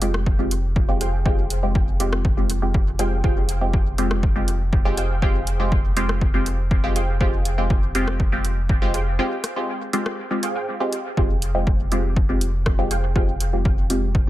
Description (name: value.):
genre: dub techno.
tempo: 121 BPM.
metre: 4/4.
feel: straight.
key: F minor.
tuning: A4 = 440 Hz.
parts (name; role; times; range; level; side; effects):
filtered dub chord stab; stabs; 0.0-14.3 s; Ab3 to G4; -25 LUFS; equal; chorus, phaser, sidechain pumping, dub echo.
pure sine sub bass; bass; 0.0-14.3 s; F1; -23 LUFS; equal; sidechain pumping.
punchy analog drum machine; drums; 0.0-14.0 s; hi-hat, rim click; -30 LUFS; equal; overdrive, dub echo.
electronic kick drum; drums; 0.3-14.2 s; none; -20 LUFS; equal; overdrive.
warbly dusty pluck; riff; 1.0-13.3 s; Ab4 to G5; -32 LUFS; right 2 dB; ensemble chorus, sidechain pumping, dub echo.
room: digital ambience.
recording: echo-heavy mix.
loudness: -19 LUFS.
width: side -15 dB against mid.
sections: 0.0-11.2 A section; 11.2-14.3 A section.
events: break 9.2-11.2.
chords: 0.0 Fmadd9.